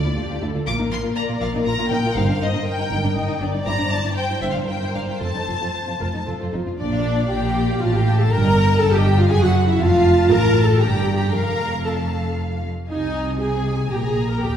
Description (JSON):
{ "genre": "quick classical-period movement for string orchestra", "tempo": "119 BPM", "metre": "3/4", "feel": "rubato", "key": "unclear", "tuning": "A4 = 440 Hz", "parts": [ { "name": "rich studio violin section", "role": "melody", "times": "0.0-14.6 s", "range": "D5 to D6", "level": "-29 LUFS", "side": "left 3 dB", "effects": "none" }, { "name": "warm studio violin section", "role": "second line", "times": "0.0-14.6 s", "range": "D4 to Bb5", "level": "-28 LUFS", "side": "left 2 dB", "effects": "none" }, { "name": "warm studio viola section", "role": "accompaniment", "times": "0.0-14.6 s", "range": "D4 to Eb5", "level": "-23 LUFS", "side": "equal", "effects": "none" }, { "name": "rich studio cello section", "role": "bass", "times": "0.0-14.6 s", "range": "D2 to C3", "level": "-22 LUFS", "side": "equal", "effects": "none" }, { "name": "dark studio double bass section", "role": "bass", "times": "0.2-14.6 s", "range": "F1 to Eb2", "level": "-24 LUFS", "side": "right 1 dB", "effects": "none" } ], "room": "wet scoring stage reverb, RT60 1.6 s", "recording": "heard from further back in the room", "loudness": "-18 LUFS", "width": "side -9 dB against mid", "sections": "0.0-6.8 A section; 6.8-14.6 B section", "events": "none", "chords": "0.0 Dm; 0.7 Bb; 2.2 Eb/G; 3.7 C7/G; 5.2 F; 6.8 Bb; 7.8 F/A; 8.3 Eb/G; 9.3 Eadd9/F#; 9.8 F; 10.8 Gm; 11.3 F; 12.9 Ab/C; 13.9 Absus2/Bb", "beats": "0.17 | 0.67 1.17 1.66 | 2.16 2.66 3.16 | 3.66 4.17 4.68 | 5.21 5.75 6.28 | 6.80 7.31 7.82 | 8.32 8.82 9.32 | 9.81 10.31 10.82 | 11.34 11.87 12.38 | 12.89 13.40 13.91 | 14.41" }